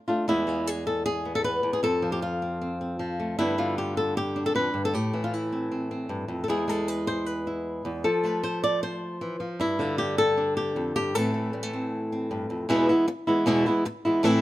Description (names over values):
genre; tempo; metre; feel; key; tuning
flamenco; 155 BPM; 4/4; straight; unclear; A4 = 440 Hz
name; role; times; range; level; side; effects
flamenco guitar; solo; 0.1-14.4 s; E2 to D5; -24 LUFS; equal; none
room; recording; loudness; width
light reverb; close, detailed microphones; -24 LUFS; side -15 dB against mid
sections
0.3-12.7 A section; 12.7-14.4 B section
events
none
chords
0.3 E; 1.8 F; 3.4 G; 4.9 Am; 6.5 E; 8.0 F; 9.6 Gsus2; 11.1 Am; 12.7 E